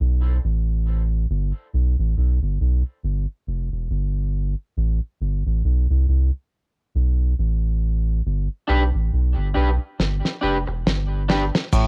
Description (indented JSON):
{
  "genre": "dub reggae",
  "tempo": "69 BPM",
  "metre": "4/4",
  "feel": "swing 58% on 16ths",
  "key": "unclear",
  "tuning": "A4 = 440 Hz",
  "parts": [
    { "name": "soft dub sub bass", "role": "bass", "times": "0.0-11.9 s", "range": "E1 to C2", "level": "-22 LUFS", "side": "equal", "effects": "none" },
    { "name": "electric guitar at the edge of break-up", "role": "accompaniment", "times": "8.7-11.4 s", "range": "D4 to B4", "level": "-28 LUFS", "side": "equal", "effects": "cassette tape, tape echo" },
    { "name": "damped 70s drum kit", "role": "drums", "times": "10.0-11.9 s", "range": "crash cymbal, kick drum, snare drum", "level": "-24 LUFS", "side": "equal", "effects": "none" },
    { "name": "mellow clav", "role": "riff", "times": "11.7-11.9 s", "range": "A2", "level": "-23 LUFS", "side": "equal", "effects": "cassette tape" },
    { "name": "cabasa", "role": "percussion", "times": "11.7-11.9 s", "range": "none", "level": "-40 LUFS", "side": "equal", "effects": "none" }
  ],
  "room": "little or no reverb",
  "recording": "home recording on cassette",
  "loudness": "-22 LUFS",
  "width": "mono",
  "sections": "0.0-11.7 A section",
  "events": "break 0.0-8.2; drum fill 10.0-11.7",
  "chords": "0.0 N.C.; 1.3 G; 4.8 Am; 8.2 G"
}